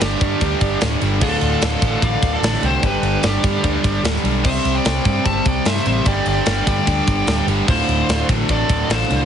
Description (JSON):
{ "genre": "hard rock", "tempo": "148 BPM", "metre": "4/4", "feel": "straight", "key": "unclear", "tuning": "A4 = 444 Hz", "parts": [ { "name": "smooth overdriven lead guitar", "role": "melody", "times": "0.0-9.2 s", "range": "G4 to A5", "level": "-24 LUFS", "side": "left 1 dB", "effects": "none" }, { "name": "octave-fuzz lead guitar", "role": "second line", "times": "0.0-9.2 s", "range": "D4 to E5", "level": "-27 LUFS", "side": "right 2 dB", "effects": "distortion" }, { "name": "crunchy overdriven guitar", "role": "riff", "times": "0.0-9.2 s", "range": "D2 to C4", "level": "-25 LUFS", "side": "left 13 dB", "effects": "spring reverb" }, { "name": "overdriven semi-hollow guitar", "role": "riff", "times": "0.0-9.2 s", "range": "D2 to C4", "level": "-24 LUFS", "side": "right 11 dB", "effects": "none" }, { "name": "tight distorted guitar", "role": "riff", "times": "0.0-9.2 s", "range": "D2 to C4", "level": "-26 LUFS", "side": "equal", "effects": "distortion" }, { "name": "vintage muted picked electric bass", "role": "bass", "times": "0.0-9.2 s", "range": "D1 to G2", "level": "-22 LUFS", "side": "equal", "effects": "none" }, { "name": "tight metal drum kit", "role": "drums", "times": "0.0-9.2 s", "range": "crash cymbal, kick drum, ride cymbal, snare drum", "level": "-21 LUFS", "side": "equal", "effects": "none" } ], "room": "light reverb", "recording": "heavily compressed radio sound, multiband compression, nothing above 10.9 kHz", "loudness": "-15 LUFS", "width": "side -8 dB against mid", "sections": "0.0-9.2 A section", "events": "none", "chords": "0.0 G5; 1.2 Dm; 2.8 G; 4.4 C5; 6.1 G5; 7.7 Dm", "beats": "0.01 0.41 0.82 | 1.22 1.62 2.03 2.43 | 2.83 3.24 3.64 4.04 | 4.45 4.85 5.26 5.66 | 6.07 6.47 6.88 7.28 | 7.69 8.09 8.50 8.90" }